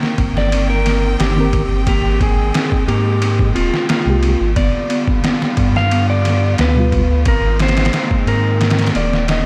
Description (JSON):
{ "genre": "trip hop", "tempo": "89 BPM", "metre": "4/4", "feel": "straight", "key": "C minor", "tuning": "A4 = 440 Hz", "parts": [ { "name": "clear studio string section", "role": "sustained chords", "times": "0.0-9.5 s", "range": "D3 to G5", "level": "-28 LUFS", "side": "equal", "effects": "none" }, { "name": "Celtic harp", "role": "arpeggios", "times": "0.0-9.5 s", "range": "Bb3 to G4", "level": "-25 LUFS", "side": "equal", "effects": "digital delay" }, { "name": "trip hop sampler-style drum kit", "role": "drums", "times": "0.0-9.5 s", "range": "kick drum, ride cymbal, snare drum", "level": "-21 LUFS", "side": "equal", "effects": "overdrive" }, { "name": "warm sub bass", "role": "bass", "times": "0.2-9.5 s", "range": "Eb1 to Ab2", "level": "-19 LUFS", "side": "equal", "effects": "tube saturation" }, { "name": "clean lap steel guitar", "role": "melody", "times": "0.4-9.5 s", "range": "F4 to F5", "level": "-24 LUFS", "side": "equal", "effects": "none" }, { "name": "mellow reed electric piano", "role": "accompaniment", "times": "1.4-7.0 s", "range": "B2 to Bb4", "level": "-22 LUFS", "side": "equal", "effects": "tremolo" } ], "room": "light reverb, digital ambience", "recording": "none", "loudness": "-16 LUFS", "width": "mono", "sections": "0.0-9.5 A section", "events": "none", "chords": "0.0 Cm7; 1.9 Abmaj7; 4.6 G7; 7.3 Fm7/Ab", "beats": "0.52 1.20 | 1.87 2.54 3.22 3.89 | 4.57 5.24 5.91 6.59 | 7.26 7.94 8.61 9.29" }